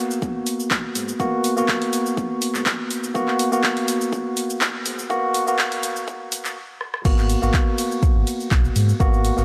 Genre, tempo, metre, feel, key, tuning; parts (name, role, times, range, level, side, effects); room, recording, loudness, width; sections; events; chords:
deep house; 123 BPM; 4/4; swing 54% on 16ths; G# minor; A4 = 441 Hz
tine electric piano; stabs; 0.0-9.4 s; A#3 to F#4; -25 LUFS; equal; vintage 12-bit sampler grit, sidechain pumping, low-pass filter, tape echo
deep house drum kit; drums; 0.1-9.4 s; cabasa, crash cymbal, handclaps, hi-hat, ride cymbal, rim click; -28 LUFS; equal
electronic kick drum; drums; 0.2-9.1 s; -23 LUFS; equal; high-pass filter on kick, high-pass filter on room
sub bass with octave; bass; 0.4-9.4 s; F#1 to G#2; -24 LUFS; equal; sidechain pumping, high-pass filter
light reverb; high-pass filter; -22 LUFS; mono
0.0-7.1 A section; 7.1-9.4 B section
build-up 0.0-7.1; drum fill 6.8; drop 7.1-9.4
0.0 G#m9